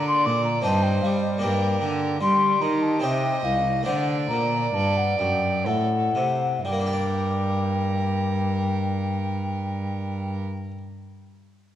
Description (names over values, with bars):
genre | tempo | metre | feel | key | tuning
classical, baroque-style sonata movement with continuo | 59-78 BPM | 3/4 | rubato | G minor | A4 = 440 Hz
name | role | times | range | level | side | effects
mellow hollow baroque flute | melody | 0.0-10.4 s | Eb5 to D6 | -26 LUFS | left 3 dB | none
rich violin | second line | 0.0-10.4 s | G4 to Eb5 | -29 LUFS | right 4 dB | none
harpsichord | accompaniment | 0.0-10.8 s | C2 to D5 | -29 LUFS | equal | none
rich cello | bass | 0.0-10.4 s | C2 to G3 | -26 LUFS | right 1 dB | none
room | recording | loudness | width
wet concert hall reverb, RT60 1.9 s | worn, warbling old tape, cassette tape, warbly pitch drift | -21 LUFS | side -11 dB against mid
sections
0.0-6.6 A section; 6.6-9.7 B section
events
slowing down 0.3-6.6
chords
0.0 Gm; 0.7 Cm/G; 1.4 Gm; 3.0 Cm; 3.9 D7; 6.6 Gm